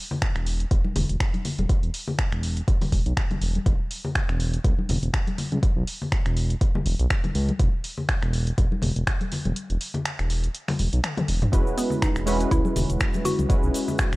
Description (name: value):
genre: deep house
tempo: 122 BPM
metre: 4/4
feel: swing 56% on 16ths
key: E major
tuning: A4 = 439 Hz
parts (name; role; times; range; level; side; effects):
- congas; percussion; 0.1-14.0 s; none; -30 LUFS; left 2 dB; none
- electronic kick drum; drums; 0.2-14.1 s; none; -23 LUFS; equal; small room ambience
- punchy analog drum machine; drums; 0.2-14.2 s; finger snaps, hi-hat, toms; -30 LUFS; equal; small room ambience
- smooth synth bass; bass; 0.4-14.2 s; E1 to C#2; -24 LUFS; equal; tube saturation, sidechain pumping
- warm analog keys; stabs; 11.5-14.2 s; G#3 to B4; -26 LUFS; right 1 dB; chorus, sidechain pumping
- cabasa; percussion; 11.5-14.2 s; none; -40 LUFS; left 3 dB; none
- mallet-like synth pluck; melody; 11.8-13.9 s; B3 to F#4; -30 LUFS; right 1 dB; chorus, cassette tape, analog delay
room: little or no reverb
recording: dry, gritty hardware recording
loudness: -22 LUFS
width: side -21 dB against mid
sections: 0.0-14.2 A section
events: kick drops out 9.6-11.5; drum fill 11.0-11.5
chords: 0.0 N.C.; 3.7 E5; 7.6 N.C.; 11.5 E69